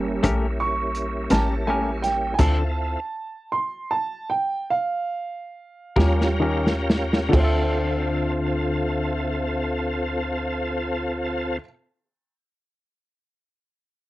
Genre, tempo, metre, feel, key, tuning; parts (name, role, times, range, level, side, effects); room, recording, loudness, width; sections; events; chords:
slow blues; 42-56 BPM (dotted quarters); 12/8; straight; D minor; A4 = 440 Hz
dark upright piano; accompaniment; 0.0-11.6 s; G3 to C#6; -27 LUFS; right 3 dB
tonewheel organ; sustained chords; 0.0-11.6 s; G3 to Bb4; -27 LUFS; equal; chorus vibrato, fast rotary speaker
hollow knocking FM bass; bass; 0.0-11.6 s; G1 to Eb2; -26 LUFS; equal; transformer saturation
semi-hollow electric guitar; accompaniment; 0.2-11.7 s; D3 to Bb4; -27 LUFS; left 3 dB; harmonic tremolo
warm soul drum kit; drums; 0.2-7.6 s; crash cymbal, hi-hat, kick drum, snare drum; -24 LUFS; equal
little or no reverb; worn, warbling old tape, cassette tape, warbly pitch drift; -21 LUFS; side -16 dB against mid
0.0-7.3 A section; 7.3-13.1 B section
upright piano solo 0.0-7.3; slowing down 1.0-7.3; stop 2.4-6.0; drum fill 6.0-7.3
0.0 A7b9; 2.4 Dm7; 6.0 Eb7; 7.3 Dm7